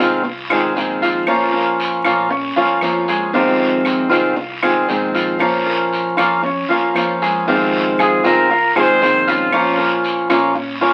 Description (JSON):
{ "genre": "latin, Cuban son and guajira", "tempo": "116 BPM", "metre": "4/4", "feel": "straight", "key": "F minor", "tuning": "A4 = 440 Hz", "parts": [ { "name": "fingerpicked swing-style acoustic guitar", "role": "accompaniment", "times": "0.0-10.9 s", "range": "C3 to F4", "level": "-18 LUFS", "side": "equal", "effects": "none" }, { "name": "bright grand piano", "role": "arpeggios", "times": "0.0-10.9 s", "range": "F3 to F6", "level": "-23 LUFS", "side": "equal", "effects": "none" }, { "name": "upright bass", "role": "bass", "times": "0.0-10.9 s", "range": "Bb1 to Bb2", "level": "-38 LUFS", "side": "equal", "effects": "none" }, { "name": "guiro", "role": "percussion", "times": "0.2-10.9 s", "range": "none", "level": "-28 LUFS", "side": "equal", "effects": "none" }, { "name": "claves", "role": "percussion", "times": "0.5-10.6 s", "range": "none", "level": "-27 LUFS", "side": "equal", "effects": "none" }, { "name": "warm trumpet", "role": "melody", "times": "8.0-10.1 s", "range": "F4 to C5", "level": "-18 LUFS", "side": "equal", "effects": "none" }, { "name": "nylon-string guitar", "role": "second line", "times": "8.0-10.1 s", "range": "Db4 to Ab4", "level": "-29 LUFS", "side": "equal", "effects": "none" } ], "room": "wet studio reverb, RT60 0.6 s", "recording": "very old 78 rpm record, vinyl crackle", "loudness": "-16 LUFS", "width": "mono", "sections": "0.0-7.5 A section; 7.5-10.9 B section", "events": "none", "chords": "0.0 Fm7; 1.3 Bbm; 3.3 Fm7; 5.4 Bbm; 7.5 Fm7; 9.5 Bbm" }